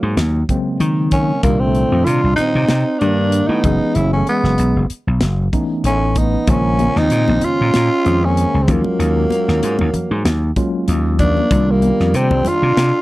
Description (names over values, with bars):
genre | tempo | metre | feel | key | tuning
electric jazz fusion | 95 BPM | 4/4 | swing 54% on 16ths | unclear | A4 = 440 Hz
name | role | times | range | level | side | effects
growling tenor saxophone | melody | 0.0-13.0 s | Bb3 to F4 | -18 LUFS | equal | slapback echo
warm trombone | second line | 0.0-13.0 s | Gb3 to D4 | -23 LUFS | right 5 dB | none
vintage slap bass | bass | 0.0-12.9 s | Gb1 to Eb3 | -17 LUFS | equal | none
modern studio drum kit | drums | 0.2-12.9 s | hi-hat, kick drum, snare drum | -20 LUFS | equal | none
tine electric piano | accompaniment | 0.5-12.7 s | Bb2 to C5 | -21 LUFS | left 1 dB | medium stereo tremolo
congas | percussion | 6.8-12.6 s | none | -24 LUFS | left 3 dB | none
room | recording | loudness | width
little or no reverb | dry, close 1970s-style studio recording | -13 LUFS | side -18 dB against mid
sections
0.0-13.0 A section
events
none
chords
0.0 Ebm11; 1.4 Cm11; 3.6 Gbm11; 6.5 Bbm11; 8.7 Ebm11; 11.5 Cm11